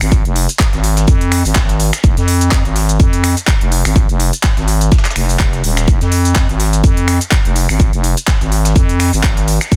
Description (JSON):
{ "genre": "bass house", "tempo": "125 BPM", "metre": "4/4", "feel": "swing 56% on 16ths", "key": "F minor", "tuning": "A4 = 444 Hz", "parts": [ { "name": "growling FM bass", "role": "bass", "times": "0.0-9.8 s", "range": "Eb1 to F2", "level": "-16 LUFS", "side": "equal", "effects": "overdrive, sidechain pumping" }, { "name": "garage drum kit", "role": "drums", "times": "0.0-9.8 s", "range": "finger snaps, handclaps, hi-hat, shaker", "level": "-21 LUFS", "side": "equal", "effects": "soft clipping on snare" }, { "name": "electronic kick drum", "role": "drums", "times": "0.1-9.8 s", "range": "none", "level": "-15 LUFS", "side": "equal", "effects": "none" }, { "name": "electronic shaker and snare drum", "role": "drums", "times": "0.1-9.8 s", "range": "none", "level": "-31 LUFS", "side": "equal", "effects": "none" } ], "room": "digital ambience", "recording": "dense, heavily limited modern master", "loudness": "-13 LUFS", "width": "mono", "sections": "0.0-9.8 A section", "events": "none", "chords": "none" }